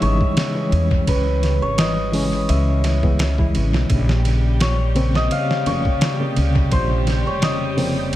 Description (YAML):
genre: trip hop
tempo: 85 BPM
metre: 4/4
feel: swing 54% on 16ths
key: unclear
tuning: A4 = 440 Hz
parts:
  - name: hammered dulcimer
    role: melody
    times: 0.0-8.2 s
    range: B4 to E#5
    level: -24 LUFS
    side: left 1 dB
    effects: dub echo
  - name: reed electric piano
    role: accompaniment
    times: 0.0-8.2 s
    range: B#2 to E4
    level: -24 LUFS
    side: equal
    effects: fast tremolo, harmonic tremolo, dub echo
  - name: semi-hollow electric guitar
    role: arpeggios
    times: 0.0-8.2 s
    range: C#3 to E#3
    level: -28 LUFS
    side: left 2 dB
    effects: dub echo
  - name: upright bass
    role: bass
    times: 0.0-8.1 s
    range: E#1 to E2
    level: -20 LUFS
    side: equal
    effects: none
  - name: trip hop sampler-style drum kit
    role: drums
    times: 0.0-8.2 s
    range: hi-hat, kick drum, ride cymbal, snare drum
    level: -23 LUFS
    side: equal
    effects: dub echo
  - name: wind-like tuned noise texture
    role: texture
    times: 0.0-8.2 s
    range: G3 to B5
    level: -33 LUFS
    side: right 2 dB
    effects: built-in reverb
  - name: rich studio violin section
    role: sustained chords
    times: 3.9-8.2 s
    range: G3 to G4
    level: -31 LUFS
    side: right 1 dB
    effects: none
room: light reverb, digital ambience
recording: echo-heavy mix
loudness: -16 LUFS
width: side -14 dB against mid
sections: 0.0-8.2 A section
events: none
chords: 0.0 C#m; 3.9 A#madd9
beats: 0.37 | 1.08 1.78 2.49 3.19 | 3.90 4.61 5.31 6.02 | 6.72 7.43 8.13